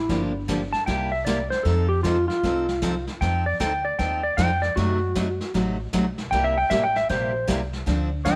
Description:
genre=country, western swing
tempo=154 BPM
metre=4/4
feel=swing 64% on 8ths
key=unclear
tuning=A4 = 438 Hz
part: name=clean lap steel guitar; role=second line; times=0.0-8.4 s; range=E4 to A5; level=-26 LUFS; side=equal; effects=none
part: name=upright bass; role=bass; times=0.0-8.4 s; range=G1 to F#2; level=-30 LUFS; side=equal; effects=none
part: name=picked steel-string acoustic guitar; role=accompaniment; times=0.1-8.4 s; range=C3 to A4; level=-29 LUFS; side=equal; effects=none
part: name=vintage brush drum kit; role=drums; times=0.1-8.4 s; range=brushed snare drum, hi-hat, kick drum, snare drum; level=-34 LUFS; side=equal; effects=none
room=moderate echo chamber reverb, RT60 1.4 s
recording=none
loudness=-24 LUFS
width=mono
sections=0.0-8.4 A section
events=electric slide guitar solo 0.0-8.4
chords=0.1 Gm7; 0.9 C7; 1.7 F7; 4.8 F#dim7; 6.3 C7

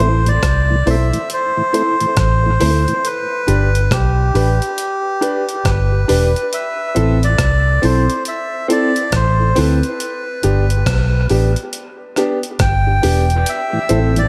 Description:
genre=dub reggae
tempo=69 BPM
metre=4/4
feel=swing 61% on 16ths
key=A minor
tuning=A4 = 440 Hz
part: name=melodica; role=melody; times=0.0-14.3 s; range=G4 to G5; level=-22 LUFS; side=equal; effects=dub echo
part: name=mellow tonewheel organ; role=accompaniment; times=0.0-2.9, 13.7-14.2 s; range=A2 to E4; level=-26 LUFS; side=equal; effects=dub echo
part: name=clear upright piano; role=stabs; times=0.0-14.1 s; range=B3 to C5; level=-23 LUFS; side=equal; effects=dub echo
part: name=vintage muted fingered electric bass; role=bass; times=0.0-14.3 s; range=E1 to D2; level=-17 LUFS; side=equal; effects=none
part: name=breakbeat sampler-style drum kit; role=drums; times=0.3-14.3 s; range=hi-hat, kick drum, rim click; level=-24 LUFS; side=equal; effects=none
room=light reverb, digital ambience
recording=echo-heavy mix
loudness=-16 LUFS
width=mono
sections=0.0-14.3 A section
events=none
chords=0.0 Am; 3.0 G; 6.5 Am; 10.0 G; 13.5 Am

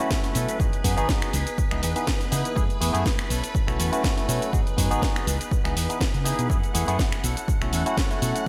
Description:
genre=filtered disco house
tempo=122 BPM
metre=4/4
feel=swing 54% on 16ths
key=unclear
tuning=A4 = 437 Hz
part: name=barky tine electric piano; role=accompaniment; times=0.0-8.5 s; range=A3 to G#4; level=-31 LUFS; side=equal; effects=phaser, sidechain pumping
part: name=string machine, full ensemble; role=sustained chords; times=0.0-8.5 s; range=B4 to F#5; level=-37 LUFS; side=equal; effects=phaser, ensemble chorus, sidechain pumping
part: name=direct-recorded clean electric guitar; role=riff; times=0.0-8.5 s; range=E3 to A4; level=-37 LUFS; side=equal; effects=sidechain pumping
part: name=house drum kit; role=drums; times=0.0-8.4 s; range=finger snaps, hi-hat, shaker, snare drum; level=-32 LUFS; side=equal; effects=sidechain pumping on hats, sidechain pumping on perc, sidechain pumping on cymbals, gated reverb
part: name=impact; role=sound effects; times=0.0-0.6 s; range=none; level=barely audible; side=none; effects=none
part: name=electronic kick drum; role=drums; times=0.1-8.1 s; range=none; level=-28 LUFS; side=equal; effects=none
part: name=fingered electric bass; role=bass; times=0.4-8.3 s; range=G#1 to C#3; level=-29 LUFS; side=equal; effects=sidechain pumping
room=light reverb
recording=bright 1980s-style digital production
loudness=-24 LUFS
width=mono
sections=0.0-8.5 A section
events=impact 0.0-0.6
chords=0.0 B9sus4; 0.6 G#m7; 1.3 C#m9; 2.6 F#m11; 3.3 B9sus4; 4.5 G#m7; 5.3 C#m9; 6.5 F#m11; 7.2 B9sus4

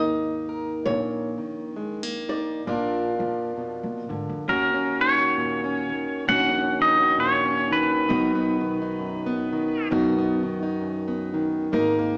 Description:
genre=acoustic folk duo or small band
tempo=66 BPM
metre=4/4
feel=swing 58% on 8ths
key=Eb minor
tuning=A4 = 445 Hz
part: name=flamenco guitar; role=melody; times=0.0-4.1 s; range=Db5 to Eb5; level=-33 LUFS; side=equal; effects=none
part: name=fingerpicked plugged-in steel-string acoustic guitar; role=accompaniment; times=0.0-12.2 s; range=Eb2 to Bb4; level=-27 LUFS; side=equal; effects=none
part: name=upright bass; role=bass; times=0.0-12.2 s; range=Ab1 to Bb2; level=-36 LUFS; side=equal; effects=none
part: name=pedal steel guitar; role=second line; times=4.5-9.9 s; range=Bb4 to Gb5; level=-25 LUFS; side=equal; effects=none
room=wet large studio reverb, RT60 1.1 s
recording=heard from further back in the room, small speaker sound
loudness=-24 LUFS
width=mono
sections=0.0-4.5 A section; 4.5-12.2 B section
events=pedal steel guitar solo 4.5-12.2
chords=0.0 Absus2; 0.9 Bbsus4; 2.7 Bb; 4.5 Ebm7; 8.1 B

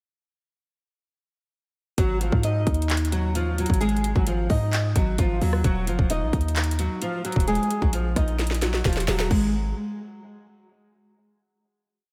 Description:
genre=hip hop, trap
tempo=131 BPM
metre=4/4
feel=half-time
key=unclear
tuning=A4 = 441 Hz
part: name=flamenco guitar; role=melody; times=2.0-9.5 s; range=E#3 to D#5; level=-29 LUFS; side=equal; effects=lush chorus, analog delay
part: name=hard-hitting 808-style bass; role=bass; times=2.0-9.7 s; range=D#1 to G#2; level=-27 LUFS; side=equal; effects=none
part: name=trap drum kit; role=drums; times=2.0-9.4 s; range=crash cymbal, handclaps, hi-hat, kick drum, rim click, snare drum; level=-27 LUFS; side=equal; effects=none
room=moderate lush hall reverb, RT60 1.8 s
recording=dreamy mix soaked in reverb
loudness=-24 LUFS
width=mono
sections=2.0-9.3 hook; 9.3-11.1 final note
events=drum fill 8.4-9.3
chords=2.0 G#5; 5.6 D#m; 9.3 N.C.

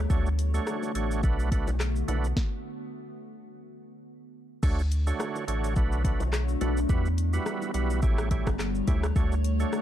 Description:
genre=dancehall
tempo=106 BPM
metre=4/4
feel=swing 56% on 16ths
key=unclear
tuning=A4 = 440 Hz
part: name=glassy FM pad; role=sustained chords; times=0.0-9.8 s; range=D3 to C#5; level=-34 LUFS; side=left 2 dB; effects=ensemble chorus, built-in reverb, sidechain pumping
part: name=saturated sub bass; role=bass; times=0.0-9.7 s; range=G1 to E2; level=-27 LUFS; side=equal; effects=none
part: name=overdriven tonewheel organ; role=accompaniment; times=0.1-9.8 s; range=G3 to C#5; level=-34 LUFS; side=right 6 dB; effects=chorus vibrato
part: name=afro-pop drum kit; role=drums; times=0.1-9.8 s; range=crash cymbal, handclaps, hi-hat, kick drum, rim click, shaker, snare drum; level=-28 LUFS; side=equal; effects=none
part: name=bongos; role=percussion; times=0.7-9.8 s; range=none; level=-40 LUFS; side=left 5 dB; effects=none
room=little or no reverb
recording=dark, warm production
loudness=-25 LUFS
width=side -12 dB against mid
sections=0.0-4.6 A section; 4.6-9.8 A section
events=stop 2.4-4.6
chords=0.1 Dmaj7; 1.2 Bm7; 2.4 N.C.; 4.6 Dmaj7; 5.8 Bm7; 6.9 Emadd9; 8.0 A7; 9.2 Dmaj7

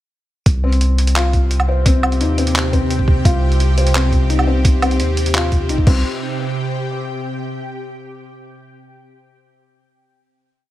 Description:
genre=half-time drum and bass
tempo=172 BPM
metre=4/4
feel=half-time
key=C minor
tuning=A4 = 440 Hz
part: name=bowed-like drone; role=sustained chords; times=1.1-7.4 s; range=C3 to G5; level=-24 LUFS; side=equal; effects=built-in reverb, phaser, vintage 12-bit sampler grit, sidechain pumping
part: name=long sustained 808-style bass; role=bass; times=0.5-6.0 s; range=Bb1 to Eb2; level=-16 LUFS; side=equal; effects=tube saturation
part: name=boom bap sampler-style drum kit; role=drums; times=0.5-5.9 s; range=crash cymbal, handclaps, hi-hat, woodblock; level=-22 LUFS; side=right 1 dB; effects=small room ambience
part: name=electronic kick drum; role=drums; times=0.5-5.9 s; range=none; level=-15 LUFS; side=equal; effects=small room ambience
part: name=felt-muted upright piano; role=arpeggios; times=0.6-6.1 s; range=C4 to C5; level=-22 LUFS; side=left 3 dB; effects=tape echo
room=light reverb, digital ambience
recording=none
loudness=-14 LUFS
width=side -14 dB against mid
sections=0.5-6.0 drop; 6.0-7.4 final note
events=drop 0.5-6.0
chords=0.5 C5; 5.9 N.C.; 6.0 C5

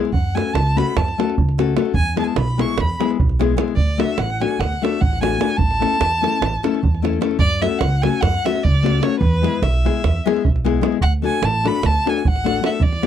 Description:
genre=balkan folk, Balkan wedding band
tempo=298 BPM (eighths)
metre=9/8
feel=straight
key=unclear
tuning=A4 = 440 Hz
part: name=nylon-string guitar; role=accompaniment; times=0.0-13.1 s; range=G#3 to A4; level=-20 LUFS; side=left 11 dB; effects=none
part: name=rich violin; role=melody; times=0.1-13.1 s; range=B4 to C#6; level=-23 LUFS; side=equal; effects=none
part: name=upright bass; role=bass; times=0.1-13.0 s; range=A1 to F#2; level=-21 LUFS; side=right 1 dB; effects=none
part: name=davul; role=percussion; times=0.1-13.1 s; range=none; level=-21 LUFS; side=right 4 dB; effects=none
room=little or no reverb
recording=dry, close 1970s-style studio recording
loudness=-16 LUFS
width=side -10 dB against mid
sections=0.0-7.4 A section; 7.4-13.1 A section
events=none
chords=0.1 F#m; 1.9 E; 3.8 D; 5.6 A; 7.4 F#m; 9.2 E; 11.0 D

